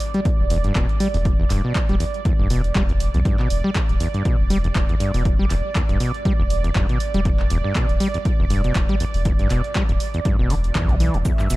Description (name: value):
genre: acid house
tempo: 120 BPM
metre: 4/4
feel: swing 56% on 16ths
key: E minor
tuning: A4 = 439 Hz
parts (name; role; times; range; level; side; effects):
- warm analog pad; sustained chords; 0.0-11.6 s; D5 to E5; -30 LUFS; right 8 dB; chorus, tremolo, sidechain pumping
- punchy analog drum machine; drums; 0.0-11.6 s; handclaps, hi-hat; -31 LUFS; equal; none
- overdriven acid bass; riff; 0.1-11.6 s; E2 to G3; -24 LUFS; equal; tube saturation, sidechain pumping, ping-pong delay
- electronic kick drum; drums; 0.3-11.4 s; none; -21 LUFS; equal; none
- warm sub bass; bass; 0.4-11.6 s; D1 to B1; -22 LUFS; equal; tube saturation, sidechain pumping
- cabasa; percussion; 11.2-11.6 s; none; -36 LUFS; right 5 dB; none
room: digital ambience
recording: dark, warm production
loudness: -18 LUFS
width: side -19 dB against mid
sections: 0.0-11.6 A section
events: none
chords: 0.0 E5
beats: 0.25 0.75 | 1.25 1.75 2.25 2.75 | 3.25 3.75 4.25 4.75 | 5.25 5.75 6.25 6.75 | 7.25 7.75 8.25 8.75 | 9.25 9.75 10.25 10.75 | 11.25